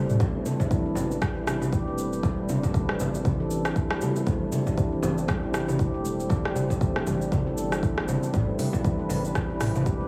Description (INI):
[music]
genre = afro house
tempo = 118 BPM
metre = 4/4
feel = swing 58% on 16ths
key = A minor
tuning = A4 = 438 Hz
[part]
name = dark analog pad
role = sustained chords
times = 0.0-10.1 s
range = G3 to C5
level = -35 LUFS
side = equal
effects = chorus, sidechain pumping
[part]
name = handpan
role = arpeggios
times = 0.0-10.1 s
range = E3 to A4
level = -33 LUFS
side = equal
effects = sidechain pumping, dub echo
[part]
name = round analog bass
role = bass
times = 0.0-10.1 s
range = E1 to A1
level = -37 LUFS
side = equal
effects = sidechain pumping
[part]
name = afro-pop drum kit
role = drums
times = 0.1-10.0 s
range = hi-hat, rim click, shaker, toms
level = -34 LUFS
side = equal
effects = none
[part]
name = electronic kick drum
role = drums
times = 0.2-10.0 s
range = none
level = -29 LUFS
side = equal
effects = none
[part]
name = congas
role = percussion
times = 0.2-9.8 s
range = none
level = -32 LUFS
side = equal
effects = none
[sound]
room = light reverb, digital ambience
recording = small room reverb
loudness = -26 LUFS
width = mono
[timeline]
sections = 0.0-10.1 A section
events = drum fill 0.0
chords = 0.0 Am11